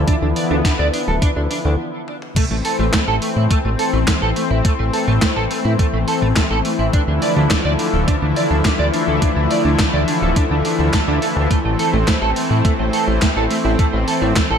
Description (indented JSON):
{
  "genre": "synthwave",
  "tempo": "105 BPM",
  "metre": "4/4",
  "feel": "straight",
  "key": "A minor",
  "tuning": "A4 = 441 Hz",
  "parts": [
    { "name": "lush unison pad", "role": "sustained chords", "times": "0.0-14.6 s", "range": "D3 to E4", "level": "-20 LUFS", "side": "left 2 dB", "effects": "chorus, sidechain pumping" },
    { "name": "fat analog bass", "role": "bass", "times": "0.0-14.6 s", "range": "D1 to A2", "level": "-18 LUFS", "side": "equal", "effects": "none" },
    { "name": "clean electric guitar", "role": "riff", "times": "0.1-14.6 s", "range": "A3 to D5", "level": "-22 LUFS", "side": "right 4 dB", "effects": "analog chorus, digital delay" },
    { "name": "electronic kick drum", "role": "drums", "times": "0.1-14.5 s", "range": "none", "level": "-18 LUFS", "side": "equal", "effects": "studio reverb" },
    { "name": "gated 80s digital drum machine", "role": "drums", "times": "0.1-14.5 s", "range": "crash cymbal, handclaps, hi-hat, snare drum, toms", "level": "-23 LUFS", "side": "equal", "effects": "gated reverb, gated reverb snare, high-pass filter on hats, studio reverb, high-pass filter on snare, high-pass filter on toms, high-pass filter on cymbals" }
  ],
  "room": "light reverb, digital ambience",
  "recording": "none",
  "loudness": "-15 LUFS",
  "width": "side -7 dB against mid",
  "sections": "0.0-2.4 A section; 2.4-14.6 B section",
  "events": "filter sweep on analog synth pad 0.0-2.4; stop 1.8-2.4; drum fill 2.1",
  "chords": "0.0 Dmadd9; 2.4 Am; 6.9 Dmadd9; 11.5 Am"
}